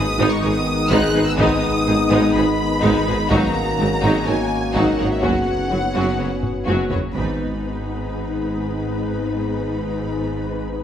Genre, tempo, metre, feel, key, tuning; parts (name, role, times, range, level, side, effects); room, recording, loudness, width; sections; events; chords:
cinematic, hybrid orchestral and electronic film score; 125 BPM; 4/4; straight; G# minor; A4 = 441 Hz
warm symphonic violin section; melody; 0.0-10.8 s; E5 to F#6; -26 LUFS; left 2 dB
warm symphonic violin section; second line; 0.0-10.8 s; B3 to C#5; -28 LUFS; left 3 dB
clear symphonic viola section; accompaniment; 0.0-10.8 s; F#3 to F#4; -25 LUFS; right 1 dB
clear trombone section; sustained chords; 0.0-6.9 s; C#3 to B3; -26 LUFS; right 2 dB
dark French horn section; sustained chords; 0.0-6.9 s; B3 to F#4; -26 LUFS; left 3 dB
glassy FM pad; sustained chords; 0.0-10.8 s; A#3 to C#5; -26 LUFS; left 2 dB; ensemble chorus, built-in reverb
mellow tuba; bass; 0.0-7.0 s; F#1 to G#1; -26 LUFS; right 3 dB
rich symphonic cello section; bass; 0.0-10.8 s; F#2 to G#2; -27 LUFS; right 2 dB
sub bass with octave; bass; 0.0-10.8 s; F#1 to G#1; -31 LUFS; equal
warm studio double bass section; bass; 0.0-10.8 s; F#1 to G#1; -28 LUFS; right 3 dB
taiko ensemble; drums; 0.9-8.1 s; -29 LUFS; equal
moderate scoring stage reverb, RT60 1.5 s; -17 LUFS; side -9 dB against mid
0.0-7.2 A section; 7.2-10.8 B section
drum fill 6.4-7.2; band accent 7.2-7.6
0.0 G#m; 3.3 D#m7/G#; 5.2 F#sus4; 7.2 G#m